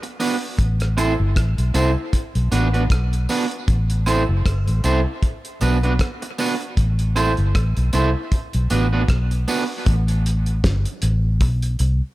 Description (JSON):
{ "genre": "dub reggae", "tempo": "78 BPM", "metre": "4/4", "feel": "swing 57% on 16ths", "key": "A dorian", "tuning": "A4 = 437 Hz", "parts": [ { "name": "electric guitar at the edge of break-up", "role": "accompaniment", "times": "0.0-9.6 s", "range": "B3 to C5", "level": "-23 LUFS", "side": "right 3 dB", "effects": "spring reverb, dub echo" }, { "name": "cloth-damped thuddy drum kit", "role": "drums", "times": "0.0-12.0 s", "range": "hi-hat, kick drum, rim click, snare drum", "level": "-22 LUFS", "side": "equal", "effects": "none" }, { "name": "tambourine and woodblock", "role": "percussion", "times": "0.2-9.7 s", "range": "none", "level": "-32 LUFS", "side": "right 4 dB", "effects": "dub echo" }, { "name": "vintage muted fingered electric bass", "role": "bass", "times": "0.6-12.0 s", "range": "F#1 to C2", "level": "-19 LUFS", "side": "equal", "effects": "none" } ], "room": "small room ambience", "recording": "none", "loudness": "-17 LUFS", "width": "side -17 dB against mid", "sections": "0.0-9.9 A section; 9.9-12.1 B section", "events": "none", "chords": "0.0 Bm; 0.6 Am; 2.1 Bm; 3.7 Am; 5.2 Bm; 6.8 Am; 8.3 Bm; 9.9 Gsus2; 11.4 Gadd11 (rootless)", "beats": "| 0.58 1.35 2.13 2.90 | 3.67 4.45 5.22 5.99 | 6.77 7.54 8.31 9.09 | 9.86 10.63 11.41" }